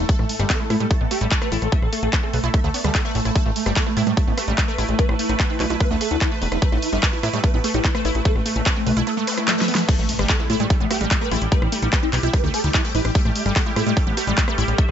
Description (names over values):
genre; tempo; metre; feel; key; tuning
psychedelic trance; 147 BPM; 4/4; straight; unclear; A4 = 443 Hz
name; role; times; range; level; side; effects
swarming rave lead; melody; 0.0-14.9 s; A3 to E5; -26 LUFS; left 1 dB; chorus, phaser, sidechain pumping, ping-pong delay
evolving wavetable pad; sustained chords; 0.0-14.9 s; G3 to B4; -28 LUFS; right 3 dB; chorus, built-in reverb, sidechain pumping
fat analog bass; bass; 0.0-14.9 s; E1 to A2; -23 LUFS; equal; tube saturation
wide unison pluck; riff; 0.1-14.8 s; G3 to B4; -28 LUFS; moving between left 6 dB and right 5 dB; auto-pan, sidechain pumping, ping-pong delay
big-room dance drum kit; drums; 0.1-14.9 s; crash cymbal, handclaps, hi-hat, rim click, snare drum; -25 LUFS; equal; overdrive
electronic kick drum; drums; 0.1-14.9 s; none; -20 LUFS; equal; overdrive
swell, zap and impact; sound effects; 9.2-11.5 s; none; -30 LUFS; equal; none
room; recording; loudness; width
little or no reverb; nothing above 7.8 kHz; -18 LUFS; side -9 dB against mid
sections
0.0-9.9 A section; 9.9-14.9 B section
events
swell 9.2-9.9; drum fill 9.5-9.9; drop 9.9-14.9; impact 9.9-11.5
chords
0.0 A5